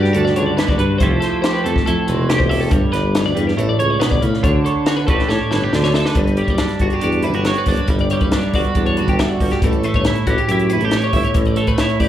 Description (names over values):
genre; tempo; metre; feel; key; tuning
math rock and midwest emo; 139 BPM; 4/4; straight; G lydian; A4 = 440 Hz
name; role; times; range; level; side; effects
twelve-string electric guitar; accompaniment; 0.0-12.1 s; G2 to C#5; -19 LUFS; right 4 dB; analog chorus, slapback echo
twelve-string electric guitar; arpeggios; 0.0-12.1 s; F#4 to E5; -24 LUFS; left 6 dB; slapback echo
mellow tuba; bass; 0.0-12.1 s; E1 to A2; -19 LUFS; left 1 dB; none
compact cocktail drum kit; drums; 0.0-12.1 s; hi-hat, kick drum, snare drum; -20 LUFS; left 1 dB; none
room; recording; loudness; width
light reverb; live gig heard through the venue's PA, club reverb; -14 LUFS; side -11 dB against mid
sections
0.0-6.2 A section; 6.2-12.1 B section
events
drum fill 5.3-6.2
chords
0.0 Gmaj7; 1.0 Fmaj9; 2.7 G; 3.6 Asus4; 4.4 Dmaj7; 5.1 A9sus4; 5.7 Dsus2; 6.2 Gmaj7; 9.6 A7